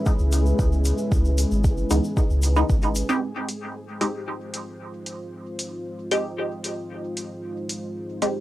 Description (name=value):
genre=dub techno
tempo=114 BPM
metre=4/4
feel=straight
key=F minor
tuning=A4 = 440 Hz
part: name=dark analog pad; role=sustained chords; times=0.0-8.4 s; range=Ab3 to C5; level=-30 LUFS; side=equal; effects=chorus, sidechain pumping
part: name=flickering grainy texture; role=texture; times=0.0-3.2 s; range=Ab3 to Ab4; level=-38 LUFS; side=left 2 dB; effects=built-in reverb, sidechain pumping
part: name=electronic kick drum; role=drums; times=0.1-2.8 s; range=none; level=-22 LUFS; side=equal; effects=studio reverb, cassette tape
part: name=tube shaker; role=percussion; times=0.1-3.2 s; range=none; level=-38 LUFS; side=left 2 dB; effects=none
part: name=soft dub sub bass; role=bass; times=0.2-3.0 s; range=Ab1 to Db2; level=-21 LUFS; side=equal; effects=sidechain pumping
part: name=electronic hi-hat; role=drums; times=0.3-8.3 s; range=none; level=-31 LUFS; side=equal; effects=studio reverb, cassette tape
part: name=filtered dub chord stab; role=stabs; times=1.9-8.4 s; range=Fb3 to G4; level=-26 LUFS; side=equal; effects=phaser, sidechain pumping, dub echo
room=light reverb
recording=home recording on cassette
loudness=-22 LUFS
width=side -15 dB against mid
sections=0.0-3.2 A section; 3.2-8.4 B section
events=none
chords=0.0 Dbm7; 3.2 Fm7